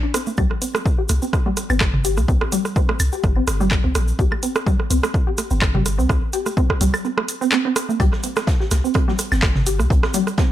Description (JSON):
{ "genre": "minimal techno", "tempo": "126 BPM", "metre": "4/4", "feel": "swing 54% on 16ths", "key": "unclear", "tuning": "A4 = 440 Hz", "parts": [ { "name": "resonant blip pluck", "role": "riff", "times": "0.0-10.4 s", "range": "G3 to G4", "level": "-24 LUFS", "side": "equal", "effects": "lush chorus, sidechain pumping, digital delay" }, { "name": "punchy analog drum machine", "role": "drums", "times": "0.1-10.2 s", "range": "handclaps, hi-hat", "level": "-24 LUFS", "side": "equal", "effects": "none" }, { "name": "booming analog drum machine", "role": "percussion", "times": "0.1-10.4 s", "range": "congas, rim click, toms, woodblock", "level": "-24 LUFS", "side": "right 3 dB", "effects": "digital delay" }, { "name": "tube shaker", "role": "percussion", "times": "0.1-10.5 s", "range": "none", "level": "-31 LUFS", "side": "right 1 dB", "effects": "none" }, { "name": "punchy sub bass", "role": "bass", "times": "0.4-10.0 s", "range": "G1 to C2", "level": "-20 LUFS", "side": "equal", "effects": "sidechain pumping" }, { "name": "electronic kick drum", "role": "drums", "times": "0.4-10.5 s", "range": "none", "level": "-19 LUFS", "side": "equal", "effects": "none" }, { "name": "big rock drum kit", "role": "drums", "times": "8.0-10.5 s", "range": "hi-hat, snare drum", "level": "-34 LUFS", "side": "right 2 dB", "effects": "high-pass filter on hats, high-pass filter on snare, high-pass filter on room" } ], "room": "light reverb", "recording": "none", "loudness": "-17 LUFS", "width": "side -12 dB against mid", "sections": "0.0-10.5 A section", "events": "none", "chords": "0.0 C5" }